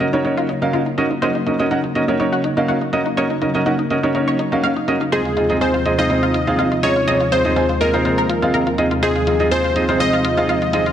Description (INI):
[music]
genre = progressive house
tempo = 123 BPM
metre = 4/4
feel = straight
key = Eb dorian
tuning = A4 = 440 Hz
[part]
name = lush unison pad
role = sustained chords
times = 0.0-10.9 s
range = Eb2 to F4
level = -23 LUFS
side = equal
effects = chorus
[part]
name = felt-muted upright piano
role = stabs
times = 0.0-10.8 s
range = C4 to Ab5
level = -19 LUFS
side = right 1 dB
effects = digital delay
[part]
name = electronic hi-hat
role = drums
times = 0.0-10.9 s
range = none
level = -35 LUFS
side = left 2 dB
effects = low-pass filter on hats, low-pass filter on cymbals, low-pass filter on snare, low-pass filter on perc
[part]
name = analog pluck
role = arpeggios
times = 0.1-10.9 s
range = Eb4 to F5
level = -24 LUFS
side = left 2 dB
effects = wide subtle chorus, digital delay
[part]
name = plucky unison lead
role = melody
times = 5.1-10.9 s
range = Ab4 to Eb5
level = -19 LUFS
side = left 1 dB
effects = digital delay
[sound]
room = moderate lush hall reverb, RT60 2.3 s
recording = none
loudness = -15 LUFS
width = side -10 dB against mid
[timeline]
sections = 0.0-10.9 A section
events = filter sweep on synth pluck 0.0-10.9; filter sweep on analog synth pad 0.0-10.9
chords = 0.0 Ebm7; 5.1 Fm7/Eb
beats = 0.25 0.73 | 1.22 1.71 2.20 2.69 | 3.17 3.66 4.15 4.64 | 5.12 5.61 6.10 6.59 | 7.08 7.56 8.05 8.54 | 9.03 9.51 10.00 10.49